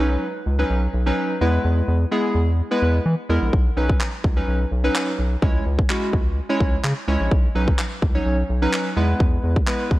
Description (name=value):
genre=dance-pop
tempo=127 BPM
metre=4/4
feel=straight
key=B major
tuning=A4 = 440 Hz
part: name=warm analog keys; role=accompaniment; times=0.0-9.9 s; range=F#3 to C#5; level=-23 LUFS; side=equal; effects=chorus, sidechain pumping
part: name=round analog bass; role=bass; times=0.0-10.0 s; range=A#1 to E3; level=-21 LUFS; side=equal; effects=sidechain pumping
part: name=pop drum kit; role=drums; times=3.5-10.0 s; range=handclaps, kick drum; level=-21 LUFS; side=equal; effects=none
room=light reverb, digital ambience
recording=worn, warbling old tape, cassette tape, warbly pitch drift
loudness=-18 LUFS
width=side -17 dB against mid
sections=0.0-10.0 A section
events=none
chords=0.0 Badd9; 1.4 E; 3.5 Badd9; 5.4 C#m; 7.3 Badd9; 9.0 E